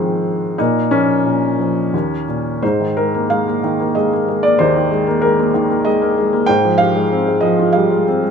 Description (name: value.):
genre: classical, lyrical solo piano.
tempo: 94 BPM.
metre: 3/4.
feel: rubato.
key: unclear.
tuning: A4 = 443 Hz.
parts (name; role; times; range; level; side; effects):
felt-muted upright piano; solo; 0.0-8.3 s; Eb2 to G5; -14 LUFS; equal; none.
room: light reverb.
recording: minimal, uncompressed stereo recording.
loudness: -14 LUFS.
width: side -6 dB against mid.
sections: 0.0-2.6 A section; 2.6-8.3 B section.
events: none.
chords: 0.0 Fm7/Ab; 0.6 Bbm; 1.9 Eb5; 2.6 Absus2; 6.5 Fmadd9/Ab.